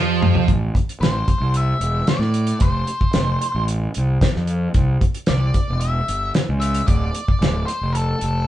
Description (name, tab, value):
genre	classic rock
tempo	112 BPM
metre	4/4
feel	straight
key	unclear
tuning	A4 = 440 Hz
part	distorted electric guitar	riff	0.0-0.5 s	F3	-22 LUFS	right 9 dB	overdrive
part	overdriven semi-hollow guitar	riff	0.0-0.5 s	F3	-23 LUFS	right 3 dB	none
part	fuzz fingered electric bass	bass	0.0-8.5 s	D1 to A2	-20 LUFS	right 1 dB	overdrive
part	damped 70s drum kit	drums	0.2-8.3 s	hi-hat, kick drum, snare drum, toms	-19 LUFS	equal	vintage 12-bit sampler grit
part	octave-fuzz lead guitar	melody	1.0-8.5 s	A4 to E5	-25 LUFS	left 1 dB	distortion
room	moderate studio ambience, RT60 0.5 s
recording	band playing live in one room, cassette tape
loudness	-17 LUFS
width	side -13 dB against mid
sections	0.5-8.5 A section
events	drum fill 0.0-0.5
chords	0.5 Am; 2.6 F; 4.8 C; 6.9 Dm